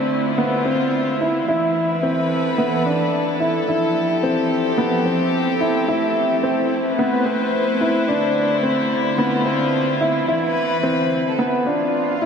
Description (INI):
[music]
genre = piano and strings electronica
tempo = 109 BPM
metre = 4/4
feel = straight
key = unclear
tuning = A4 = 439 Hz
[part]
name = warm chamber string section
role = sustained chords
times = 0.0-11.4 s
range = D3 to C5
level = -22 LUFS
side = left 1 dB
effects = none
[part]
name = dark baby grand piano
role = riff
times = 0.0-12.3 s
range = B3 to E4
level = -19 LUFS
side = equal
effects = tape echo
[part]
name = shaker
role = drums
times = 0.1-11.2 s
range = none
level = barely audible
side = none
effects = none
[part]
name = swell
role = sound effects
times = 11.7-12.3 s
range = none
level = -28 LUFS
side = right 3 dB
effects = none
[sound]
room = wet huge ambient reverb, RT60 8.6 s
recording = dreamy mix soaked in reverb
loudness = -17 LUFS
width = side -6 dB against mid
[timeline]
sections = 0.0-12.3 A section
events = swell 11.7-12.3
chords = 0.0 Dm7; 1.5 Esus4; 3.7 Fmaj7; 5.9 Am7; 8.1 Dm7; 10.3 E5